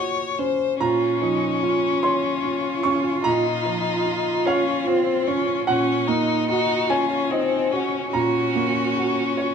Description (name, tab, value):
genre	neoclassical piano and strings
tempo	49 BPM (dotted quarters)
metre	6/8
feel	rubato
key	Bb minor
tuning	A4 = 442 Hz
part	clear violin	melody	0.0-9.5 s	C4 to Db5	-23 LUFS	left 7 dB	none
part	clear baby grand piano	accompaniment	0.0-9.5 s	Bb2 to Db6	-23 LUFS	right 4 dB	none
part	rich cello	second line	0.8-9.5 s	Db4 to Gb4	-26 LUFS	right 5 dB	none
room	wet large studio reverb, RT60 1.4 s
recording	none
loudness	-19 LUFS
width	side -6 dB against mid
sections	0.8-9.5 A section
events	none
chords	0.0 Gb/Bb; 0.8 Bbm; 5.7 Ebm7/Bb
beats	| 0.80 2.03 | 3.25 4.46 | 5.67 6.90 | 8.13 9.37